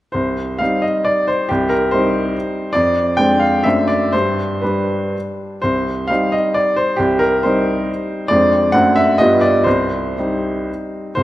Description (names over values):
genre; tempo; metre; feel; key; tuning
classical, romantic triple-time dance for piano with dotted rhythms; 110-151 BPM; 3/4; rubato; C minor; A4 = 441 Hz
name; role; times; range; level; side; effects
clear baby grand piano; solo; 0.1-11.2 s; C1 to G5; -14 LUFS; equal; none
room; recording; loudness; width
moderate concert hall reverb, RT60 2.3 s; lossy compression artefacts; -14 LUFS; side -15 dB against mid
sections
0.1-11.2 A section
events
none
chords
0.1 Cm; 2.8 Dm7b5/F; 3.6 D7/F#; 4.1 G; 5.6 Cm; 8.3 Dm7b5/F; 8.7 D7/F#; 9.2 G7; 9.7 Cm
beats
| 0.14 0.61 1.08 | 1.51 1.93 2.35 | 2.75 3.19 3.65 | 4.14 4.63 5.15 | 5.63 6.10 6.56 | 6.99 7.43 7.89 | 8.30 8.73 9.19 | 9.66 10.17 10.69 | 11.17